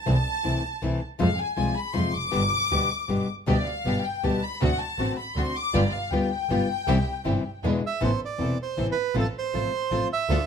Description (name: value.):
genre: tango.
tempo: 159 BPM.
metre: 3/4.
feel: rubato.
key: unclear.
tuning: A4 = 440 Hz.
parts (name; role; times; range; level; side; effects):
warm symphonic violin section; second line; 0.0-7.6 s; D5 to D6; -28 LUFS; left 3 dB; none.
nylon-string guitar; accompaniment; 0.1-10.4 s; B2 to G4; -27 LUFS; left 4 dB; none.
clear double bass; bass; 0.1-10.4 s; E1 to F2; -27 LUFS; right 2 dB; none.
warm chamber string section; stabs; 3.5-10.5 s; B3 to A4; -35 LUFS; equal; none.
bandoneon; melody; 7.9-10.5 s; A4 to E5; -27 LUFS; right 8 dB; none.
room: light reverb.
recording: close, detailed microphones.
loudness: -23 LUFS.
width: side -7 dB against mid.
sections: 0.0-8.0 A section; 8.0-10.5 B section.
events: violin section solo 0.0-8.0.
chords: 0.1 Am/C; 1.2 Fm; 2.3 G; 4.6 D7; 5.7 G7; 6.9 C; 7.6 E7; 8.0 Amadd9; 9.2 F/A.